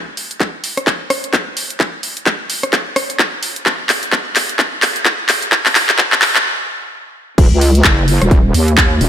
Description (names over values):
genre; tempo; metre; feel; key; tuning
bass house; 129 BPM; 4/4; swing 59% on 16ths; Eb minor; A4 = 440 Hz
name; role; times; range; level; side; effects
big-room dance drum kit; drums; 0.2-9.1 s; crash cymbal, handclaps, hi-hat, rim click; -14 LUFS; equal; overdrive, studio reverb
electronic kick drum; drums; 0.4-8.9 s; none; -15 LUFS; equal; high-pass filter on kick, studio reverb, high-pass filter on room
wobble bass; bass; 7.4-9.1 s; Eb1 to Eb2; -12 LUFS; equal; chorus, tube saturation, sidechain pumping
room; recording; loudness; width
moderate lush hall reverb, RT60 2.2 s; high-pass filter; -12 LUFS; side -9 dB against mid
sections
0.0-7.4 A section; 7.4-9.1 B section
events
build-up 0.0-7.4; drum fill 0.0-6.5; stop 6.5-7.4; drop 7.4-9.1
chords
none